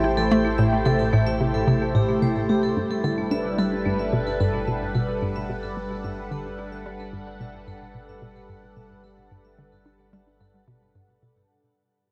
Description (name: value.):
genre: ambient, sequencer-driven space music.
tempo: 110 BPM.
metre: 4/4.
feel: straight.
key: unclear.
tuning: A4 = 440 Hz.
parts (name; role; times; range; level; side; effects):
phased analog pad; sustained chords; 0.0-11.5 s; G3 to G5; -29 LUFS; equal; phaser, chorus, shimmer reverb.
hollow square pluck; riff; 0.0-11.3 s; G2 to E4; -26 LUFS; equal; chorus, cassette tape, analog delay.
warm sub bass; bass; 0.0-11.5 s; G1 to A1; -37 LUFS; equal; none.
vibraphone with hard mallets; arpeggios; 0.2-11.5 s; A3 to A5; -34 LUFS; equal; analog delay, shimmer reverb.
room: wet huge ambient reverb, RT60 7.7 s.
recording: none.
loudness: -23 LUFS.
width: mono.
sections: 0.0-11.5 A section.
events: fade-out on vibraphone 0.0-11.5; fade-out 0.0-11.5; filter sweep on synth arpeggio sound 0.0-11.5.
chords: 0.0 Am7; 2.8 Gmaj7.